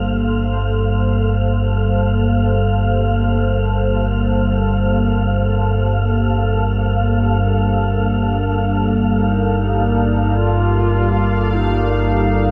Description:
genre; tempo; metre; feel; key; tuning
dark ambient drone; free time; none; none; G minor; A4 = 440 Hz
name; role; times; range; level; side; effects
sweeping resonant pad; sustained chords; 0.0-12.5 s; G3 to F5; -22 LUFS; equal; chorus, shimmer reverb
deep rumbling drone; drone; 0.0-12.5 s; G1 to G2; -19 LUFS; equal; built-in reverb, subtle chorus
wind-like tuned noise texture; texture; 0.0-12.5 s; F5; -29 LUFS; equal; built-in reverb, shimmer reverb
mellow duduk; melody; 7.9-12.5 s; D4 to F4; -26 LUFS; equal; shimmer reverb, diffuse ambient delay
room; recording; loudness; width
wet cathedral reverb, RT60 6.6 s; none; -17 LUFS; mono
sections
0.0-12.5 A section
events
fade-in on duduk 0.0-12.5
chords
0.0 Gm; 6.8 Dm/G

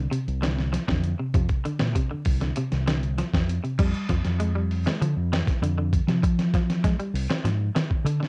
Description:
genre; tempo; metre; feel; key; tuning
afrobeat; 98 BPM; 4/4; straight; F dorian; A4 = 441 Hz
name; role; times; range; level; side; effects
clean electric guitar; arpeggios; 0.0-8.3 s; C3 to C4; -32 LUFS; equal; tremolo, cassette tape
fingered electric bass; bass; 0.0-8.3 s; C2 to F3; -27 LUFS; equal; none
dusty soul sampler-style drum kit; drums; 0.1-8.3 s; crash cymbal, hi-hat, kick drum, snare drum; -28 LUFS; equal; cassette tape
room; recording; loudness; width
light reverb; home recording on cassette; -25 LUFS; mono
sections
0.0-3.8 A section; 3.8-8.3 B section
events
none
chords
0.0 F5; 3.8 Fm69

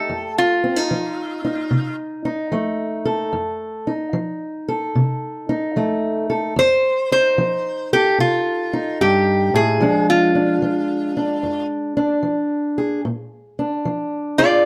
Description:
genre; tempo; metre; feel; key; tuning
acoustic country blues, solo or duo; 74 BPM; 4/4; swing 66% on 8ths; F mixolydian; A4 = 441 Hz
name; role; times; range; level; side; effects
lap resonator guitar; melody; 0.0-14.6 s; F4 to D5; -20 LUFS; equal; none
fingerpicked old ladder-braced acoustic guitar; accompaniment; 0.0-14.7 s; F2 to A4; -23 LUFS; equal; none
room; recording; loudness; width
moderate studio reverb, RT60 0.8 s; close, detailed microphones; -20 LUFS; mono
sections
0.0-14.7 A section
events
none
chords
0.0 F7; 9.8 Bb7

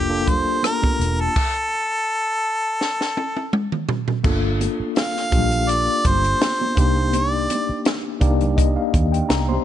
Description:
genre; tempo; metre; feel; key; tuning
lush 1970s-style soul; 83 BPM; 4/4; swing 54% on 16ths; unclear; A4 = 441 Hz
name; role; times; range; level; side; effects
bright harmonica; melody; 0.0-7.9 s; G4 to F5; -22 LUFS; equal; none
mellow tine electric piano; accompaniment; 0.0-9.6 s; Bb3 to C6; -23 LUFS; left 3 dB; medium stereo tremolo
vintage muted fingered electric bass; bass; 0.0-9.6 s; E1 to Eb2; -22 LUFS; equal; none
compact cocktail drum kit; drums; 0.3-9.5 s; crash cymbal, hi-hat, kick drum, rim click, snare drum, toms; -22 LUFS; equal; none
congas; percussion; 0.3-9.6 s; none; -30 LUFS; right 6 dB; none
room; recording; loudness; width
small room reverb; nothing above 10.3 kHz; -18 LUFS; side -11 dB against mid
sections
0.0-4.2 A section; 4.2-9.6 B section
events
stop 1.4-4.2; drum fill 2.8-4.2; tine electric piano fill 7.9-9.6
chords
0.0 Gm7; 1.4 N.C.; 4.2 Gm9; 6.8 Cm9

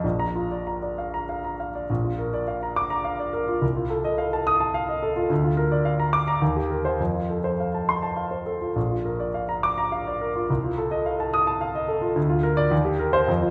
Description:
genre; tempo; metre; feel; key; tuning
classical, virtuoso piano study; 95-111 BPM; 3/4; rubato; Bb major; A4 = 440 Hz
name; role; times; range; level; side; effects
clear grand piano; solo; 0.0-13.5 s; Bb1 to Eb6; -25 LUFS; equal; none
room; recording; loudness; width
wet recital hall reverb, RT60 1.6 s; recorded in a church or concert hall; -25 LUFS; mono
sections
0.0-1.9 A section; 1.9-13.5 A section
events
none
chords
0.0 Bb; 3.6 F7/C; 5.3 Bb/D; 6.4 Cm7/Eb; 7.0 F; 8.8 Bb; 10.5 F7/C; 12.2 Bb/D; 12.7 Cm7/Eb

